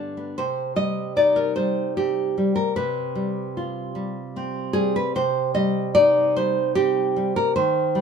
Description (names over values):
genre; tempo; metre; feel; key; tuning
romantic piece for solo classical guitar; 75 BPM; 3/4; rubato; C minor; A4 = 439 Hz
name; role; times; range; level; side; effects
nylon-string guitar; solo; 0.0-8.0 s; G2 to Eb5; -20 LUFS; equal; none
room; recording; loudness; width
moderate studio reverb, RT60 0.9 s; band playing live in one room; -20 LUFS; side -6 dB against mid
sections
0.4-8.0 A section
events
none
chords
0.4 Cm; 2.8 G7/C; 5.2 Cm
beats
| 0.37 1.17 1.98 | 2.78 3.58 4.38 | 5.17 5.97 6.79 | 7.58